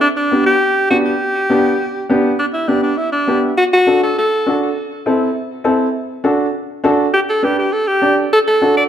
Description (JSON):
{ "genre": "latin", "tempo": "203 BPM", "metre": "4/4", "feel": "straight", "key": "G major", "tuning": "A4 = 435 Hz", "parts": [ { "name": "bright alto saxophone", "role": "melody", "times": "0.0-4.6, 7.1-8.8 s", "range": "D4 to D5", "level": "-15 LUFS", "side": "equal", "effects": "tape echo" }, { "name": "warm upright piano", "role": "accompaniment", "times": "0.3-8.8 s", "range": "B3 to D5", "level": "-16 LUFS", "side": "equal", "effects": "none" } ], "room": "wet large studio reverb, RT60 1.3 s", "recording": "dark, warm production", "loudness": "-13 LUFS", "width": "side -9 dB against mid", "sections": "0.0-2.4 A section; 2.4-8.9 B section", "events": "none", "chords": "0.0 G; 3.6 D; 4.8 Am; 5.9 D; 7.1 G; 8.3 D" }